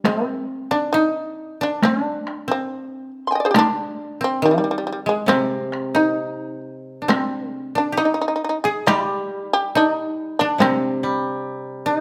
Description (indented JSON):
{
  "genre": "japanese traditional, Japanese chamber music",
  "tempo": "68 BPM",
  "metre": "2/4",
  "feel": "uneven beats, rubato",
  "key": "G miyako bushi",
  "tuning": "A4 = 444 Hz",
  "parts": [
    { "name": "koto", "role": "second line", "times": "0.0-12.0 s", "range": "G3 to Ab4", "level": "-24 LUFS", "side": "equal", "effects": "none" },
    { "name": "koto", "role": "accompaniment", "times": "0.0-0.7, 5.3-12.0 s", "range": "C3 to G3", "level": "-29 LUFS", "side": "equal", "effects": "none" },
    { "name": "taiko ensemble", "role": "percussion", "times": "0.0-10.8 s", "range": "none", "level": "-24 LUFS", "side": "equal", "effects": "none" },
    { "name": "shamisen", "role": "melody", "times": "0.1-12.0 s", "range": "G3 to C6", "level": "-25 LUFS", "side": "equal", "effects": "none" }
  ],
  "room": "moderate recital hall reverb, RT60 1.5 s",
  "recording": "close, detailed microphones",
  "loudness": "-21 LUFS",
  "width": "mono",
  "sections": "0.0-12.0 A section",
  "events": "none",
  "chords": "none",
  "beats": "| 0.05 0.95 | 1.84 2.71 | 3.56 4.42 | 5.28 6.18 | 7.10 8.00 | 8.89 9.76 | 10.61 11.45"
}